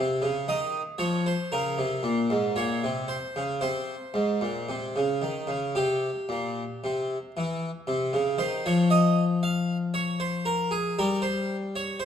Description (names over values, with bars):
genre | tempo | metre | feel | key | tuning
classical, baroque-style two-part invention for harpsichord | 58 BPM | 4/4 | straight | F minor | A4 = 440 Hz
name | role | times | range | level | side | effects
harpsichord | solo | 0.0-12.1 s | Ab2 to F5 | -25 LUFS | equal | none
room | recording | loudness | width
moderate recital hall reverb, RT60 1.4 s | dark, warm production | -25 LUFS | side -8 dB against mid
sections
0.0-7.9 A section; 7.9-12.1 B section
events
none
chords
0.0 Db; 1.5 Bbm; 3.6 Abadd11; 5.8 C; 7.9 F5/C; 10.0 Bbm/F